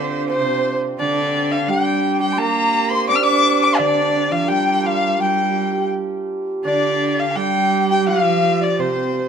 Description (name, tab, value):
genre	chinese traditional, Chinese chamber ensemble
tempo	85 BPM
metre	4/4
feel	rubato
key	G yu mode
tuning	A4 = 435 Hz
part	rich erhu	melody	0.0-9.3 s	C5 to F6	-20 LUFS	left 1 dB	none
part	bright cello	second line	0.0-9.3 s	C3 to D4	-23 LUFS	right 8 dB	none
part	hammered dulcimer	second line	0.0-9.3 s	C4 to D5	-22 LUFS	right 3 dB	none
part	mellow dizi	second line	0.0-9.3 s	C5 to D6	-23 LUFS	left 9 dB	none
room	light reverb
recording	close, detailed microphones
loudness	-16 LUFS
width	side -7 dB against mid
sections	0.0-9.3 A section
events	none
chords	none